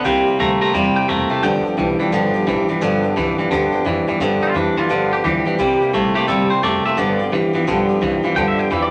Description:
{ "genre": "rockabilly", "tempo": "173 BPM", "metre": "4/4", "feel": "swing 63% on 8ths", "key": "G mixolydian", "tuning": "A4 = 441 Hz", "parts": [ { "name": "twangy electric guitar", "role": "melody", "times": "0.0-8.9 s", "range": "D4 to Bb5", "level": "-25 LUFS", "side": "equal", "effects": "none" }, { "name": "picked steel-string acoustic guitar", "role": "accompaniment", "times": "0.0-8.9 s", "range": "G2 to G4", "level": "-23 LUFS", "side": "equal", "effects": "none" }, { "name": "twangy electric guitar", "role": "riff", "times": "0.0-8.9 s", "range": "G2 to A3", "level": "-20 LUFS", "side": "equal", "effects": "none" }, { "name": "upright bass", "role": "bass", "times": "0.1-8.9 s", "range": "E1 to G2", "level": "-32 LUFS", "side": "equal", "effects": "none" } ], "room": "wet club reverb, RT60 0.8 s", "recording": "none", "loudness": "-18 LUFS", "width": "mono", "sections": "0.0-4.2 A section; 4.2-8.9 B section", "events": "clean electric guitar solo 4.2-8.9", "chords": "0.1 C7; 1.4 G7; 5.6 C7; 7.0 G7" }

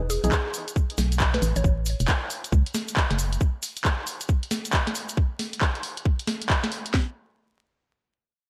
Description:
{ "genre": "UK garage, two-step garage", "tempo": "136 BPM", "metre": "4/4", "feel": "swing 64% on 16ths", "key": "unclear", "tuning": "A4 = 440 Hz", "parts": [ { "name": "mallet-like synth pluck", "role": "melody", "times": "0.0-1.6 s", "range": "G#4 to C#5", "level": "-35 LUFS", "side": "equal", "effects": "chorus, delay" }, { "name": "organ-like FM bass", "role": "bass", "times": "0.0-3.4 s", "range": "E1 to C#2", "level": "-26 LUFS", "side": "equal", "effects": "sidechain pumping" }, { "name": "punchy analog drum machine", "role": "drums", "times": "0.1-6.9 s", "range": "handclaps, hi-hat, snare drum", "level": "-30 LUFS", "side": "equal", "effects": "none" }, { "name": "cabasa", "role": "percussion", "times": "0.1-5.2 s", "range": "none", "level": "-39 LUFS", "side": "equal", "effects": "none" }, { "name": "garage drum kit", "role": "drums", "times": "0.3-7.1 s", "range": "kick drum, snare drum", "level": "-25 LUFS", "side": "equal", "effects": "overdrive" } ], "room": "digital ambience", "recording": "vinyl crackle", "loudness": "-25 LUFS", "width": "mono", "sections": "0.0-6.9 A section; 6.9-8.5 B section", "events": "drop 0.0-6.9", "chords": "0.0 E; 1.4 N.C." }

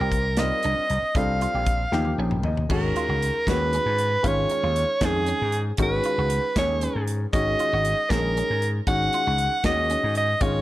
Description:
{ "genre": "electric jazz fusion", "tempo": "78 BPM (dotted quarters)", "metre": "6/8", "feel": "straight", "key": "G# dorian", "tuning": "A4 = 440 Hz", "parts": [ { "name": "clear soprano saxophone", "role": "melody", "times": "0.0-10.6 s", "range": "G#4 to F#5", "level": "-24 LUFS", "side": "right 1 dB", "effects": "slapback echo" }, { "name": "warm concert grand piano", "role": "accompaniment", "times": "0.0-10.6 s", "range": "D#3 to G5", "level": "-30 LUFS", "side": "left 4 dB", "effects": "none" }, { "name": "clean electric guitar", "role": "stabs", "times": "0.0-10.6 s", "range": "Db4 to G4", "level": "-35 LUFS", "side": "right 5 dB", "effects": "wide subtle chorus" }, { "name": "vintage slap bass", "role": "bass", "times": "0.0-10.6 s", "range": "G#1 to G#2", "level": "-26 LUFS", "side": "equal", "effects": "none" }, { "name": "modern studio drum kit", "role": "drums", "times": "0.1-10.5 s", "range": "crash cymbal, hi-hat, kick drum, snare drum, toms", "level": "-28 LUFS", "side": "equal", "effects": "none" } ], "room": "light reverb, studio reverb", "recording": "none", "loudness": "-21 LUFS", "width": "side -15 dB against mid", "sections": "0.0-2.7 A section; 2.7-10.6 B section", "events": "drum fill 1.9-2.7; grand piano fill 1.9-2.7", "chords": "0.0 F9sus4/C; 1.2 G7sus4/C; 1.9 Eb7; 2.7 G#m11; 4.2 C#add9/G#; 5.8 G#m7; 7.3 D#m7/G#; 8.9 G#7sus4" }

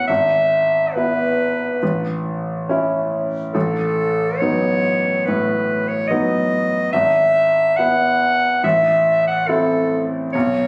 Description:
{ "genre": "classical, romantic duo for clarinet and grand piano", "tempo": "70 BPM", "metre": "4/4", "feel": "rubato", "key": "E major", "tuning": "A4 = 439 Hz", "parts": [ { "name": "clear clarinet", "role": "melody", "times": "0.0-10.7 s", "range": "A4 to F#5", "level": "-20 LUFS", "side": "equal", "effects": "none" }, { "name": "clear concert grand piano", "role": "accompaniment", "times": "0.0-10.7 s", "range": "G#1 to F#4", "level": "-23 LUFS", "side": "equal", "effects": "none" } ], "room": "light reverb", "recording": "recorded on a phone in the room, club reverb", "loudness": "-18 LUFS", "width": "mono", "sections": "0.0-10.7 A section", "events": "none", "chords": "0.1 E/G#; 1.8 A; 3.6 B7/A; 6.9 E/G#; 8.6 Am" }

